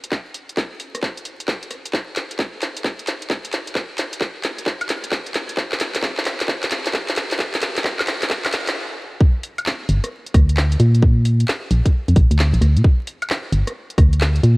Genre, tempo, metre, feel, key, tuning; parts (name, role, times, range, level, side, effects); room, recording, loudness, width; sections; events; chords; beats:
UK garage, two-step garage; 132 BPM; 4/4; swing 65% on 16ths; A4 = 440 Hz
garage drum kit; drums; 0.0-14.6 s; handclaps, hi-hat, rim click, woodblock; -23 LUFS; equal; high-pass filter on snare, cassette tape, high-pass filter on hats, high-pass filter on perc, high-pass filter on room
electronic kick drum; drums; 0.1-14.1 s; -16 LUFS; equal; high-pass filter on kick, cassette tape, high-pass filter on room
organ-like FM bass; bass; 9.9-14.6 s; G1 to Bb2; -14 LUFS; equal
light reverb; home recording on cassette, vinyl crackle; -17 LUFS; side -25 dB against mid
0.0-9.2 A section; 9.2-14.6 B section
build-up 0.0-9.2; drum fill 0.0-8.8; stop 8.8-9.2; drop 9.2-14.6
| 0.12 0.57 1.02 1.48 | 1.93 2.39 2.84 3.30 | 3.75 4.21 4.66 5.12 | 5.57 6.03 6.48 6.93 | 7.39 7.84 8.30 8.75 | 9.21 9.66 10.12 10.57 | 11.03 11.48 11.93 12.39 | 12.84 13.30 13.75 14.21